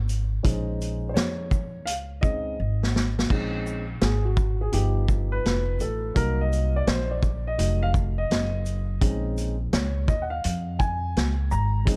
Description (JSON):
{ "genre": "hip hop, jazz-hop", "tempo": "84 BPM", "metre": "4/4", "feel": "swing 65% on 16ths", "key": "Bb minor", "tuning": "A4 = 440 Hz", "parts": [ { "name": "upright bass", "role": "bass", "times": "0.0-12.0 s", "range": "F1 to F2", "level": "-29 LUFS", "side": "equal", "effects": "none" }, { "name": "vintage drum kit", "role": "drums", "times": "0.1-12.0 s", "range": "crash cymbal, hi-hat, kick drum, shaker, snare drum", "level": "-28 LUFS", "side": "equal", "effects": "none" }, { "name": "dark concert grand piano", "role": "accompaniment", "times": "0.4-12.0 s", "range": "F3 to Bb5", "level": "-32 LUFS", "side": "equal", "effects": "none" } ], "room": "small room ambience", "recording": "dark, warm production", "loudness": "-25 LUFS", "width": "mono", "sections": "0.0-3.3 A section; 3.3-12.0 B section", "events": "grand piano solo 0.0-3.3, 3.3-12.0; drum fill 2.6-3.3", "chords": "0.0 Bbm11; 4.7 G7b13; 6.2 Cm7b5; 7.6 F7b9; 9.0 Bbm11", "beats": "| 0.45 1.16 1.88 2.59 | 3.30 4.02 4.73 5.45 | 6.16 6.88 7.59 8.30 | 9.02 9.73 10.45 11.16 | 11.88" }